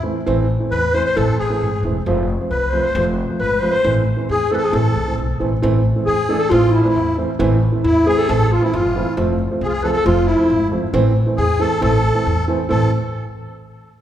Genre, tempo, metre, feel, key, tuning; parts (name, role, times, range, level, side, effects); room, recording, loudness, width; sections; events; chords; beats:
klezmer; 135 BPM; 2/4; straight; A harmonic minor; A4 = 440 Hz
dark clarinet; melody; 0.0-12.9 s; E4 to C5; -20 LUFS; left 1 dB; tape echo
musette accordion; second line; 0.0-12.9 s; D4 to C5; -24 LUFS; left 1 dB; tape echo
dark upright piano; accompaniment; 0.0-12.9 s; E3 to D4; -21 LUFS; right 2 dB
upright bass; bass; 0.0-12.9 s; E1 to E2; -20 LUFS; equal
wet recital hall reverb, RT60 1.6 s; heard from further back in the room; -15 LUFS; side -11 dB against mid
0.0-5.6 A section; 5.6-12.7 A section
0.0 Am; 2.1 F; 3.8 Am; 9.2 F; 10.9 Am
| 0.28 0.73 | 1.18 1.62 | 2.07 2.51 | 2.96 3.40 | 3.85 4.29 | 4.74 5.18 | 5.63 6.07 | 6.51 6.96 | 7.40 7.84 | 8.29 8.73 | 9.17 9.61 | 10.06 10.50 | 10.94 11.38 | 11.82 12.27 | 12.71